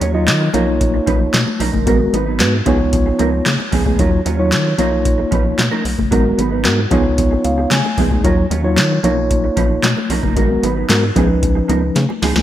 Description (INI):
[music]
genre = early-eighties boogie funk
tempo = 113 BPM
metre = 4/4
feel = straight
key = unclear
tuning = A4 = 440 Hz
[part]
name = mellow electric guitar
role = riff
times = 0.0-12.4 s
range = E#3 to Db5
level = -21 LUFS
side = right 6 dB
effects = analog chorus
[part]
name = rubbery square bass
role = bass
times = 0.0-12.4 s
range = F#1 to Eb3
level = -19 LUFS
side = equal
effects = none
[part]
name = booming analog drum machine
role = drums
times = 0.0-12.4 s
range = handclaps, hi-hat, kick drum, snare drum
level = -18 LUFS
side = equal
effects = gated reverb
[part]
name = congas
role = percussion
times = 0.0-12.4 s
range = none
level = -25 LUFS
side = left 8 dB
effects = none
[part]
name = mellow tine electric piano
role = accompaniment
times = 0.1-12.0 s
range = F3 to Ab5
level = -18 LUFS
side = left 1 dB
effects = medium stereo tremolo
[sound]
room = light reverb, digital ambience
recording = bright 1980s-style digital production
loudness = -13 LUFS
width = side -12 dB against mid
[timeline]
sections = 0.0-12.4 A section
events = tine electric piano fill 7.2-8.2; drum fill 12.0-12.4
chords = 0.0 Ebm9; 0.5 Bmaj9#11; 1.9 Abm9; 2.7 Db9; 4.0 Ebm9; 4.8 Bmaj9#11; 6.1 Abm9; 6.9 Db9; 8.2 Ebm9; 9.0 Bmaj9#11; 10.4 Abm9; 11.2 Db9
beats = 0.28 0.81 1.34 | 1.87 2.40 2.93 3.46 | 3.99 4.52 5.05 5.59 | 6.12 6.65 7.18 7.71 | 8.24 8.77 9.30 9.83 | 10.37 10.90 11.43 11.96